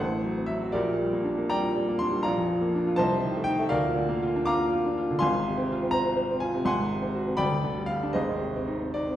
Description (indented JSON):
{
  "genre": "classical, romantic character piece for solo piano",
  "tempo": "81 BPM (dotted quarters)",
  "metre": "6/8",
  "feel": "uneven beats, rubato",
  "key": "unclear",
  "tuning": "A4 = 440 Hz",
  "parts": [
    { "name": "clear upright piano", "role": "solo", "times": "0.0-9.2 s", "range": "G1 to D6", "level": "-24 LUFS", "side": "equal", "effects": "none" }
  ],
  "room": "wet recital hall reverb, RT60 1.3 s",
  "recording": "heard from further back in the room",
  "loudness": "-24 LUFS",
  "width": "side -12 dB against mid",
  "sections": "0.0-9.2 A section",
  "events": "none",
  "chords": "0.0 F#dim/A; 0.8 Gm/Bb; 2.3 Bb; 3.0 Adim/C; 3.8 Bb/D; 5.2 Fm/Ab; 6.7 Ab7; 7.4 G; 8.2 Ab"
}